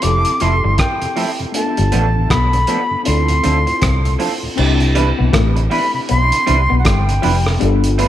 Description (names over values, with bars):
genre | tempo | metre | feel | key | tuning
lovers rock reggae | 79 BPM | 4/4 | swing 61% on 16ths | C major | A4 = 440 Hz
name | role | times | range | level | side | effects
silver concert flute | melody | 0.0-7.5 s | F#5 to D6 | -19 LUFS | equal | tape echo
tine electric piano | accompaniment | 0.0-8.1 s | A3 to A4 | -23 LUFS | left 3 dB | phaser, dub echo
electric guitar through a small old amp | riff | 0.0-7.8 s | F3 to D4 | -26 LUFS | left 8 dB | dub echo
vintage muted fingered electric bass | bass | 0.0-8.1 s | F1 to D2 | -16 LUFS | equal | none
cloth-damped thuddy drum kit | drums | 0.0-8.1 s | crash cymbal, hi-hat, kick drum, rim click | -20 LUFS | right 1 dB | none
mellow tonewheel organ | accompaniment | 0.3-8.1 s | D2 to F4 | -27 LUFS | right 1 dB | none
electric guitar through a small old amp | stabs | 0.4-8.1 s | F3 to B4 | -24 LUFS | right 6 dB | analog chorus, dub echo
room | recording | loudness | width
light reverb, small room reverb | none | -13 LUFS | side -12 dB against mid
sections
0.0-4.6 A section; 4.6-8.1 B section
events
none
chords
0.0 Fmaj7; 1.5 G9; 3.1 Dm7; 4.6 Cmaj9